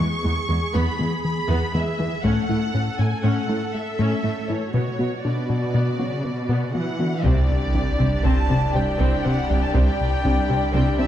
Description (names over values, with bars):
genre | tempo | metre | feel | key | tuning
cinematic, hybrid orchestral and electronic film score | 120 BPM | 5/4 | straight | unclear | A4 = 440 Hz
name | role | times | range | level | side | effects
rich symphonic violin section | melody | 0.0-11.1 s | C#5 to C#6 | -29 LUFS | left 2 dB | none
rich symphonic viola section | accompaniment | 0.0-11.1 s | D3 to A4 | -30 LUFS | right 2 dB | none
analog pluck | arpeggios | 0.0-11.1 s | C3 to F#4 | -30 LUFS | left 4 dB | chorus
plucky analog bass | riff | 0.0-11.1 s | C2 to B3 | -24 LUFS | left 1 dB | none
warm chamber cello section | bass | 0.0-11.1 s | E2 to E3 | -27 LUFS | right 2 dB | none
taiko ensemble | drums | 2.2-3.2, 7.2-11.1 s | none | -25 LUFS | equal | none
rich symphonic violin section | second line | 7.2-11.1 s | G4 to D5 | -30 LUFS | left 2 dB | none
warm French horn section | sustained chords | 7.2-11.1 s | G3 to D4 | -29 LUFS | left 1 dB | none
detuned saw bass | bass | 7.2-11.1 s | C2 | -26 LUFS | right 1 dB | none
rich symphonic double bass section | bass | 7.2-11.1 s | C2 | -30 LUFS | right 4 dB | none
sub drop | sound effects | 7.2-9.7 s | none | -29 LUFS | right 1 dB | none
room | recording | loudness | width
moderate scoring stage reverb, RT60 2.1 s | dark, warm production | -19 LUFS | side -11 dB against mid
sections
0.0-7.2 A section; 7.2-11.1 B section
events
impact 7.2-9.7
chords
0.0 E; 2.2 A; 4.7 Bm; 7.2 Csus2